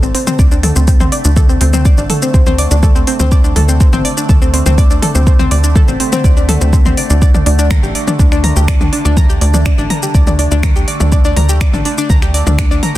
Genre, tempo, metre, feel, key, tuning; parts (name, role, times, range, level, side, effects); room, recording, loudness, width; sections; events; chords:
melodic techno; 123 BPM; 4/4; straight; A4 = 440 Hz
analog pluck; arpeggios; 0.0-13.0 s; C4 to Bb5; -17 LUFS; left 1 dB; chorus, sidechain pumping, tape echo
tight sequencer bass; bass; 0.0-13.0 s; A1 to D2; -13 LUFS; equal; tube saturation, sidechain pumping
overtone-sweeping drone; drone; 0.1-13.0 s; D3 to A3; -24 LUFS; right 1 dB; chorus, built-in reverb, sidechain pumping
deep house drum kit; drums; 0.0-13.0 s; finger snaps, hi-hat, shaker, toms; -18 LUFS; left 1 dB; soft clipping on snare
electronic kick drum; drums; 0.4-12.7 s; -11 LUFS; equal
digital ambience; dense, heavily limited modern master; -9 LUFS; side -15 dB against mid
0.0-13.0 A section
0.0 D5; 7.2 Gm